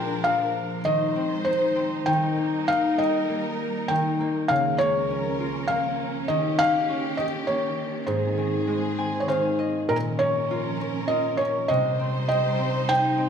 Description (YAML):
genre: children's music, lullaby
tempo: 100 BPM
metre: 3/4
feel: straight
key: unclear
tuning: A4 = 441 Hz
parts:
  - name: felt-muted upright piano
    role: melody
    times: 0.0-13.3 s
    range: Bb4 to G5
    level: -24 LUFS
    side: equal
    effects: none
  - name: concert harp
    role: accompaniment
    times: 0.0-13.3 s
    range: Ab2 to Ab5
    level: -26 LUFS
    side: left 1 dB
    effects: none
  - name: warm studio string section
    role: sustained chords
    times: 0.0-13.3 s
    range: Db2 to C5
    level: -32 LUFS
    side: right 1 dB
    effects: none
room: light reverb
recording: minimal, uncompressed stereo recording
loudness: -22 LUFS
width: side -7 dB against mid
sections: 0.0-9.9 A section; 9.9-13.3 B section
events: harp fill 8.7-9.9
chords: 0.0 Bb; 0.9 Ab/Eb; 2.1 Eb; 4.5 Bbm/Db; 6.3 Eb7; 8.1 Ab; 9.9 Bbm; 11.7 Cm